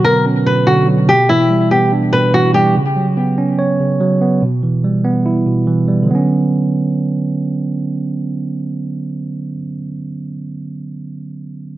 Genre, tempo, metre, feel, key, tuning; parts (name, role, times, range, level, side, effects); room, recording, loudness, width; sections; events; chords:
hip hop; 144 BPM; 4/4; half-time; B minor; A4 = 441 Hz
flamenco guitar; melody; 0.0-2.7 s; E4 to B4; -14 LUFS; left 1 dB; low-pass filter, tape echo
mellow tine electric piano; accompaniment; 0.0-11.8 s; B2 to C#5; -15 LUFS; right 2 dB; low-pass filter
light reverb; nothing above 7.8 kHz; -13 LUFS; side -15 dB against mid
0.0-6.1 A section; 6.1-9.4 B section
0.0 Bmadd9; 1.1 G6/B; 2.8 F#sus4; 4.4 Em/B; 6.1 Bmadd9